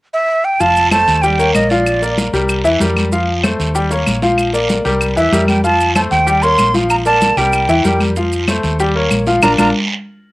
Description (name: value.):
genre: latin, salsa.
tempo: 190 BPM.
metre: 4/4.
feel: straight.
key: F major.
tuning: A4 = 439 Hz.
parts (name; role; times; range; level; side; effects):
breathy bright jazz flute; melody; 0.1-2.2, 5.2-9.7 s; D5 to C6; -14 LUFS; right 2 dB; cassette tape.
bright grand piano; accompaniment; 0.6-9.7 s; E3 to G5; -16 LUFS; left 2 dB; cassette tape.
hollow-body short-scale fingered electric bass; bass; 0.6-9.7 s; F1 to F2; -19 LUFS; equal; none.
congas; percussion; 0.6-9.7 s; none; -21 LUFS; left 1 dB; none.
guiro; percussion; 0.6-9.7 s; none; -24 LUFS; right 4 dB; none.
maracas; percussion; 0.6-9.7 s; none; -30 LUFS; right 5 dB; none.
claves; percussion; 0.9-9.7 s; none; -20 LUFS; left 2 dB; none.
room: light reverb.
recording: home recording on cassette.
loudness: -11 LUFS.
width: side -19 dB against mid.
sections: 0.6-10.3 A section.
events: band accent 9.4-10.3.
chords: 0.0 N.C.; 0.6 F; 1.2 Eb7; 1.9 Bb; 2.5 C7; 3.1 F; 3.8 Eb7; 4.4 Bb; 5.0 C7; 5.6 F; 6.3 Eb7; 6.9 Bb; 7.5 C7; 8.2 F; 8.8 Eb7; 9.4 Bb.